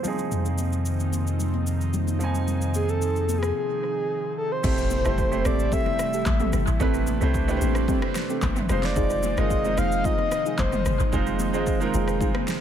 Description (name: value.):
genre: amapiano.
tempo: 111 BPM.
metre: 4/4.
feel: straight.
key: unclear.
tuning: A4 = 440 Hz.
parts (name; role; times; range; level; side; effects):
warm grand piano; accompaniment; 0.0-12.6 s; F3 to Ab5; -30 LUFS; right 6 dB; low-pass filter, analog delay.
airy breathy pad; sustained chords; 0.0-12.6 s; C3 to E4; -32 LUFS; equal; chorus, sidechain pumping, low-pass filter.
deep house drum kit; drums; 0.0-12.6 s; crash cymbal, handclaps, kick drum, rim click, shaker, snare drum, toms; -29 LUFS; equal; overdrive, analog delay.
congas; percussion; 0.0-12.6 s; none; -35 LUFS; left 8 dB; analog delay.
punchy sub bass; bass; 0.3-3.5 s; F2; -25 LUFS; equal; none.
breathy flute-like synth lead; melody; 2.8-11.0 s; Ab4 to F5; -28 LUFS; left 1 dB; chorus, low-pass filter, analog delay.
deep mellow chord stab; stabs; 4.6-12.3 s; C4 to A4; -31 LUFS; equal; chorus, phaser, analog delay.
deep log drum bass; bass; 4.6-12.2 s; F1 to C2; -26 LUFS; equal; none.
impact; sound effects; 4.6-6.8 s; none; -34 LUFS; left 1 dB; none.
room: little or no reverb.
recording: echo-heavy mix.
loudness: -22 LUFS.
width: side -9 dB against mid.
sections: 0.0-4.6 A section; 4.6-12.6 B section.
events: break 3.6-4.6; drop 4.6-12.6; impact 4.6-6.8.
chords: 0.0 Fm7; 4.6 Am7; 8.7 Fm7.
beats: | 0.32 0.86 1.40 1.94 | 2.48 3.02 3.56 4.10 | 4.64 5.18 5.72 6.26 | 6.80 7.34 7.88 8.43 | 8.96 9.51 10.05 10.59 | 11.13 11.67 12.21.